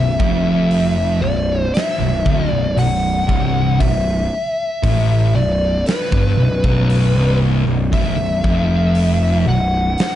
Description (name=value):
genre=stoner and doom metal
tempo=58 BPM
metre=4/4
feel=straight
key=B phrygian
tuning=A4 = 440 Hz
part: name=fuzz lead guitar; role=melody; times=0.0-10.2 s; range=B4 to F#5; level=-21 LUFS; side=left 1 dB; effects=distortion, analog delay
part: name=thick fuzz guitar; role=riff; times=0.0-9.9 s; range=B1 to A2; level=-20 LUFS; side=left 6 dB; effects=distortion
part: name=thick fuzz guitar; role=riff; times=0.0-9.9 s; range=B1 to A2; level=-19 LUFS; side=right 5 dB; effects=distortion
part: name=fuzz picked electric bass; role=bass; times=0.0-10.0 s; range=B0 to A1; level=-21 LUFS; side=equal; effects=overdrive
part: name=big rock drum kit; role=drums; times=0.2-10.2 s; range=hi-hat, kick drum, snare drum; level=-22 LUFS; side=equal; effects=none
room=light reverb, studio reverb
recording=dark, warm production, nothing above 10.8 kHz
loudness=-14 LUFS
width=side -12 dB against mid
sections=0.0-10.2 A section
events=none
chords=none